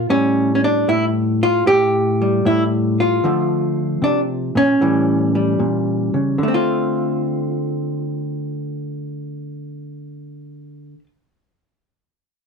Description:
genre	solo jazz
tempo	76 BPM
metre	4/4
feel	swing 69% on 8ths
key	D minor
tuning	A4 = 440 Hz
part	hollow-body jazz guitar	solo	0.0-11.1 s	A2 to G4	-17 LUFS	equal	none
room	moderate studio reverb, RT60 0.7 s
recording	dark, warm production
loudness	-16 LUFS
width	side -5 dB against mid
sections	0.0-6.4 A section; 6.4-9.5 B section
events	none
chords	0.1 A7b13; 3.2 Dm7; 4.8 A7; 6.4 Dm7

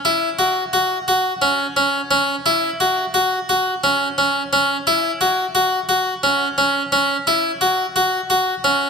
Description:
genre	progressive instrumental, progressive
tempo	174 BPM (eighths)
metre	7/8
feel	straight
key	unclear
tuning	A4 = 442 Hz
part	harpsichord	solo	0.1-8.9 s	C#4 to F#4	-16 LUFS	equal	none
room	moderate lush hall reverb, RT60 2.5 s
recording	rough home demo mix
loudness	-16 LUFS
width	side -6 dB against mid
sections	0.0-8.9 A section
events	none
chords	none

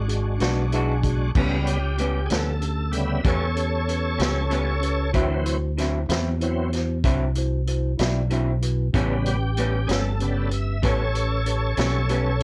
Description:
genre	slow blues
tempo	63 BPM (dotted quarters)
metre	12/8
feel	straight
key	A mixolydian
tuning	A4 = 440 Hz
part	bright tonewheel organ	sustained chords	0.0-12.4 s	C#3 to E5	-30 LUFS	equal	slow rotary speaker, overdrive, chorus vibrato
part	fingered electric bass	bass	0.0-12.4 s	G1 to E2	-26 LUFS	equal	none
part	mellow tine electric piano	accompaniment	0.1-12.4 s	C#4 to G#5	-34 LUFS	equal	none
part	vintage drum kit	drums	0.1-12.4 s	crash cymbal, hi-hat, kick drum, snare drum	-29 LUFS	equal	none
part	electric guitar through a small old amp	accompaniment	0.4-12.3 s	A2 to F#4	-31 LUFS	equal	tremolo
room	light reverb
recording	worn, warbling old tape, cassette tape, warbly pitch drift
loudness	-23 LUFS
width	mono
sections	0.0-1.4 A section; 1.4-12.4 B section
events	tine electric piano fill 0.4-1.4; tonewheel organ solo 1.4-12.4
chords	0.0 E9; 1.4 A9; 5.2 D9; 8.9 A9

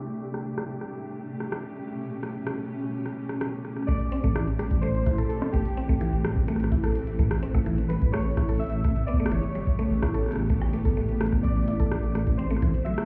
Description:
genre	IDM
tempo	127 BPM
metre	4/4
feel	straight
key	unclear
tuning	A4 = 440 Hz
part	granular cloud pad	sustained chords	0.0-13.1 s	B2 to A4	-35 LUFS	equal	built-in reverb
part	flickering grainy texture	texture	0.0-3.9 s	G4 to G5	-50 LUFS	equal	built-in reverb, shimmer reverb
part	glitchy drum kit	drums	0.3-13.1 s	hi-hat, rim click	-38 LUFS	equal	studio reverb
part	warbly lo-fi synth keys	melody	3.9-13.1 s	G4 to E5	-39 LUFS	equal	chorus, digital delay, shimmer reverb
part	mallet-like synth pluck	arpeggios	3.9-12.9 s	A2 to A4	-33 LUFS	equal	chorus, cassette tape, digital delay
part	electronic kick drum	drums	3.9-12.7 s	none	-29 LUFS	equal	studio reverb
part	dark detuned saw bass	bass	4.2-12.7 s	G1 to A1	-29 LUFS	equal	none
room	light reverb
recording	heard muffled through a wall, club reverb, EQ, low-pass filter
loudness	-27 LUFS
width	mono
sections	0.0-3.9 A section; 3.9-13.1 B section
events	filter sweep 0.0-3.9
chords	0.1 A9; 3.9 Am7; 7.7 A9; 11.4 D7/A

